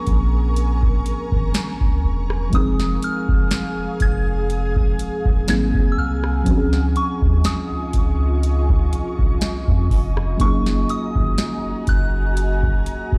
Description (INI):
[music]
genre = contemporary R&B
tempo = 61 BPM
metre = 4/4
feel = swing 54% on 16ths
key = Bb minor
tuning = A4 = 445 Hz
[part]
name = soft synth bell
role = melody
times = 0.0-13.2 s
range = Db6 to Ab6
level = -32 LUFS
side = equal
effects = chorus, tape echo
[part]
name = muted felt-like synth keys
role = accompaniment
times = 0.0-13.2 s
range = F3 to Ab4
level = -28 LUFS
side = equal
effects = chorus
[part]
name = ethereal airy pad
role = sustained chords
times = 0.0-13.2 s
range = F4 to Eb6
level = -33 LUFS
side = equal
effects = ensemble chorus, built-in reverb
[part]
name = warm sub bass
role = bass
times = 0.1-13.2 s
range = Eb1 to F2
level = -23 LUFS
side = equal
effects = none
[part]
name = booming analog drum machine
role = drums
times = 0.1-13.2 s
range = hi-hat, kick drum, rim click, snare drum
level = -22 LUFS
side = equal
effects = none
[sound]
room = digital ambience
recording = played on a big sound system in a bare room, large studio reverb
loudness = -20 LUFS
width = mono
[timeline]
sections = 0.0-13.2 A section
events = none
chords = 0.0 Bbm9; 2.5 Fm7; 5.5 Ab9; 6.5 Dbmaj9; 10.4 Gb69